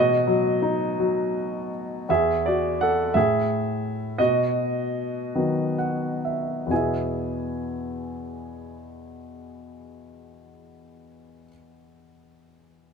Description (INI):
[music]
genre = classical, lyrical solo piano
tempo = 41-59 BPM (dotted quarters)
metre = 6/8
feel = rubato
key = E major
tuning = A4 = 440 Hz
[part]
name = clear baby grand piano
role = solo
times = 0.0-12.9 s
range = E2 to G#5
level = -22 LUFS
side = equal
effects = none
[sound]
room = light reverb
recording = close, detailed microphones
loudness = -22 LUFS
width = side -6 dB against mid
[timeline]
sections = 0.0-2.1 A section; 2.1-6.7 B section; 6.7-12.3 C section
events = slowing down 2.1-6.7; grand piano fill 5.4-6.7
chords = 0.0 B; 2.1 E; 3.2 A5; 4.2 B; 6.7 E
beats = 0.99 | 2.09 3.15 | 4.20 5.35 | 6.71 8.15 | 9.52 10.87